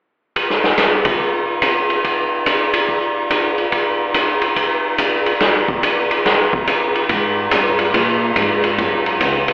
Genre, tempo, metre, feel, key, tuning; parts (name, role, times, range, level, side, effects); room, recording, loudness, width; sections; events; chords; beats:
jazz, big band swing; 142 BPM; 4/4; swing 65% on 8ths; A4 = 440 Hz
swinging big-band drum kit; drums; 0.4-9.5 s; hi-hat, kick drum, ride cymbal, snare drum; -14 LUFS; equal
upright bass; bass; 7.1-9.5 s; Db2 to Bb2; -24 LUFS; equal
moderate recital hall reverb, RT60 1.9 s; recorded in a church or concert hall, telephone sound; -14 LUFS; side -26 dB against mid
0.4-7.1 A section; 7.1-9.5 B section
| 0.36 0.79 1.21 1.63 | 2.05 2.47 2.89 3.31 | 3.73 4.15 4.57 5.00 | 5.42 5.84 6.26 6.68 | 7.10 7.52 7.94 8.36 | 8.78 9.21